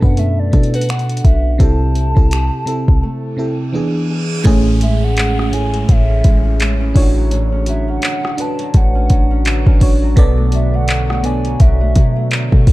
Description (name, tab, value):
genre	contemporary R&B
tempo	84 BPM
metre	4/4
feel	swing 58% on 16ths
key	A major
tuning	A4 = 440 Hz
part	hollow clarinet-like synth lead	melody	0.0-12.7 s	B4 to A5	-25 LUFS	equal	chorus
part	FM electric piano	accompaniment	0.0-12.7 s	A2 to D5	-19 LUFS	right 1 dB	chorus
part	fingerpicked old ladder-braced acoustic guitar	arpeggios	0.0-12.7 s	A2 to G#4	-26 LUFS	left 1 dB	none
part	warm 808-style bass	bass	0.0-12.7 s	A1 to B2	-16 LUFS	equal	none
part	smooth R&B drum kit	drums	0.0-12.7 s	finger snaps, handclaps, hi-hat, kick drum, rim click	-13 LUFS	equal	none
part	reverse cymbal and downlifter	sound effects	3.5-10.2 s	none	-32 LUFS	right 2 dB	none
part	deep dark ambient pad	sustained chords	6.1-12.7 s	C#3 to C#5	-28 LUFS	equal	chorus, built-in reverb
room	little or no reverb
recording	dark, warm production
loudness	-12 LUFS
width	side -18 dB against mid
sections	0.0-4.5 A section; 4.5-12.7 B section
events	break 3.0-4.5; reverse cymbal 3.5-4.5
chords	0.0 Bm7; 1.6 C6; 3.7 E7; 4.5 Amaj7; 7.0 Dmaj7/A; 10.2 Bm7